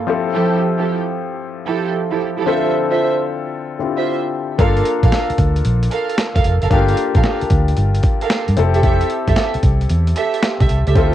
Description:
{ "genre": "R&B, new jack swing", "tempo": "113 BPM", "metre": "4/4", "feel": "swing 67% on 16ths", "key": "unclear", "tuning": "A4 = 440 Hz", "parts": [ { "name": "warm concert grand piano", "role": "accompaniment", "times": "0.0-11.1 s", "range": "D3 to A4", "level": "-21 LUFS", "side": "left 7 dB", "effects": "cassette tape" }, { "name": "dark studio string section", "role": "stabs", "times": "0.3-11.1 s", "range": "F3 to F5", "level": "-21 LUFS", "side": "right 7 dB", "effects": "cassette tape" }, { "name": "vintage muted fingered electric bass", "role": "bass", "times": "4.6-11.1 s", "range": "F1 to G2", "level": "-16 LUFS", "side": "equal", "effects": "none" }, { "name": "boom bap sampler-style drum kit", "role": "drums", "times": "4.6-11.1 s", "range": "hi-hat, kick drum, snare drum", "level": "-17 LUFS", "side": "equal", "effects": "cassette tape" } ], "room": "light reverb, studio ambience", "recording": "home recording on cassette", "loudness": "-14 LUFS", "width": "side -12 dB against mid", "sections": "0.0-11.1 A section", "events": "none", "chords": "0.1 Fmaj9; 2.5 Dm9; 4.6 Gm9; 8.6 Fmaj9" }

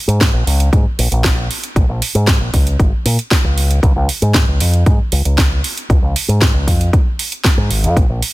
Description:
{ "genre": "nu-disco, nu disco", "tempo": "116 BPM", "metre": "4/4", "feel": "straight", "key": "unclear", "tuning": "A4 = 440 Hz", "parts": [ { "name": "fingered electric bass with an envelope filter", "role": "bass", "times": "0.1-8.2 s", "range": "Ab1 to Bb2", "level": "-14 LUFS", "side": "equal", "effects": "none" }, { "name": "house drum kit", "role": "drums", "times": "0.1-8.3 s", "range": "hi-hat, snare drum", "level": "-18 LUFS", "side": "right 1 dB", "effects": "small room ambience" }, { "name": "electronic kick drum", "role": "drums", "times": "0.2-8.1 s", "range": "none", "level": "-14 LUFS", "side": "equal", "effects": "small room ambience" } ], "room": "little or no reverb", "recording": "dense, heavily limited modern master", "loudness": "-12 LUFS", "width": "side -19 dB against mid", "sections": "0.0-8.3 A section", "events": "none", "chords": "none" }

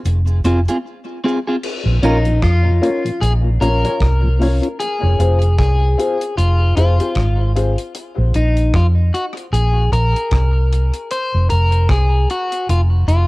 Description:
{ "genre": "dub reggae", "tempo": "76 BPM", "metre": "4/4", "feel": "swing 58% on 16ths", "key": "Bb minor", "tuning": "A4 = 437 Hz", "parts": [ { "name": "vintage muted fingered electric bass", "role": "bass", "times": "0.1-13.3 s", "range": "F1 to F2", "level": "-14 LUFS", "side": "equal", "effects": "tube saturation" }, { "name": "deep reggae drum kit", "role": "drums", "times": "0.1-13.3 s", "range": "crash cymbal, hi-hat, kick drum, rim click", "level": "-24 LUFS", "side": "equal", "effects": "cassette tape" }, { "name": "cabasa", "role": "percussion", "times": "0.1-0.8 s", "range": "none", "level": "-45 LUFS", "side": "right 6 dB", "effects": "tape echo" }, { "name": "electric guitar at the edge of break-up", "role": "accompaniment", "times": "0.5-2.2 s", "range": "C4 to Bb4", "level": "-20 LUFS", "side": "right 1 dB", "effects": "wide subtle chorus, tape echo, plate reverb" }, { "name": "mellow tonewheel organ", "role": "accompaniment", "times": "1.9-4.7 s", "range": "Bb2 to F4", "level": "-24 LUFS", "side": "left 2 dB", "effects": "slow rotary speaker, tape echo, plate reverb" }, { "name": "electric guitar at the edge of break-up", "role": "melody", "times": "2.0-13.3 s", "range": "Eb4 to C5", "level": "-21 LUFS", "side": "left 2 dB", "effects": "harmonic tremolo, cassette tape, tape echo, plate reverb" }, { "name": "clear upright piano", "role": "stabs", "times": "2.0-7.7 s", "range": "C4 to Db5", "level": "-24 LUFS", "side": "left 3 dB", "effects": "tape echo, plate reverb" } ], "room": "little or no reverb", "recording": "home recording on cassette", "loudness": "-14 LUFS", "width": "side -21 dB against mid", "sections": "0.0-1.6 A section; 1.6-13.3 B section", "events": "break 0.0-1.6; part muted 4.8-13.3", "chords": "0.0 Fm; 1.6 Bbm; 4.8 Fm; 7.9 Bb5; 11.1 F5" }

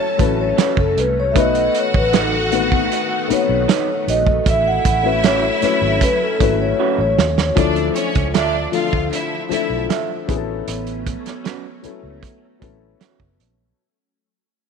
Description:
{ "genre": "lush 1970s-style soul", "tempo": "77 BPM", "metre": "4/4", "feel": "straight", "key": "A major", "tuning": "A4 = 440 Hz", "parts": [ { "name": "vibraphone with soft mallets", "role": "melody", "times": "0.0-7.5 s", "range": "A4 to F#5", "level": "-19 LUFS", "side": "left 1 dB", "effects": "none" }, { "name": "bright studio violin section", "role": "second line", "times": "0.0-9.8 s", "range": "C#4 to A5", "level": "-24 LUFS", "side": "equal", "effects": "none" }, { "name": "dark baby grand piano", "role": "accompaniment", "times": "0.0-13.8 s", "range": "F3 to B4", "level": "-22 LUFS", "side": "left 14 dB", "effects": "none" }, { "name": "soft string machine", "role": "sustained chords", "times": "0.0-13.8 s", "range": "D3 to C#4", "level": "-28 LUFS", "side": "equal", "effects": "phaser, ensemble chorus" }, { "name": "vintage muted fingered electric bass", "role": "bass", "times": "0.2-13.7 s", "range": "F#1 to D#2", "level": "-24 LUFS", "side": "equal", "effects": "none" }, { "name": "warm soul drum kit", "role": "drums", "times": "0.2-13.6 s", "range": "hi-hat, kick drum, snare drum", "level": "-19 LUFS", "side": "right 4 dB", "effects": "none" }, { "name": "electric guitar through a small old amp", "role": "riff", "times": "0.6-13.2 s", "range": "C#4 to E5", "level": "-26 LUFS", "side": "right 12 dB", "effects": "none" }, { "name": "vibraphone with soft mallets", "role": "texture", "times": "4.1-13.7 s", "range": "B3 to A4", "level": "-32 LUFS", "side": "right 14 dB", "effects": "none" } ], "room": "light reverb, small room reverb", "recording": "1960s-style stereo with parts hard left and right", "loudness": "-15 LUFS", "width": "side -6 dB against mid", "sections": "0.0-7.6 A section; 7.6-13.8 B section", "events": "vibraphone solo 0.0-7.6; drum fill 6.8-7.6; fade-out 7.6-13.8", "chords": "0.0 A69; 1.4 B7; 4.5 A69; 7.6 Dmadd9; 10.3 A69" }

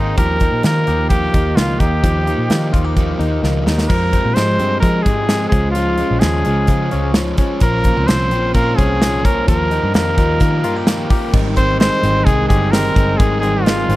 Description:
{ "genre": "jangly indie pop", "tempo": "129 BPM", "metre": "4/4", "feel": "straight", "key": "Ab major", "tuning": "A4 = 440 Hz", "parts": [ { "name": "bright trumpet", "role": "melody", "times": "0.0-14.0 s", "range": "Eb4 to C5", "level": "-19 LUFS", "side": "equal", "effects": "none" }, { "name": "overdriven semi-hollow guitar", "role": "accompaniment", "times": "0.0-14.0 s", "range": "Ab2 to C5", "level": "-22 LUFS", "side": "right 3 dB", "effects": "none" }, { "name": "direct-recorded clean electric guitar", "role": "arpeggios", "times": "0.0-14.0 s", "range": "Eb3 to Ab4", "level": "-23 LUFS", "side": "left 5 dB", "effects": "none" }, { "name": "vintage muted picked electric bass", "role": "bass", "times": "0.0-14.0 s", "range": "G1 to F3", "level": "-19 LUFS", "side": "equal", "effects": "none" }, { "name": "modern studio drum kit", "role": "drums", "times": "0.2-14.0 s", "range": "crash cymbal, hi-hat, kick drum, snare drum", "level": "-16 LUFS", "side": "equal", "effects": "none" } ], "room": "studio reverb", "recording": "dry, close 1970s-style studio recording", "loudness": "-13 LUFS", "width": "side -17 dB against mid", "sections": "0.0-3.9 A section; 3.9-11.3 B section; 11.3-14.0 C section", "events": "drum fill 3.4-3.9", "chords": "0.2 Ebadd9; 3.9 Fmadd9; 5.5 Db; 7.6 Bbmadd9; 9.5 Ebadd9; 11.3 Abmaj7" }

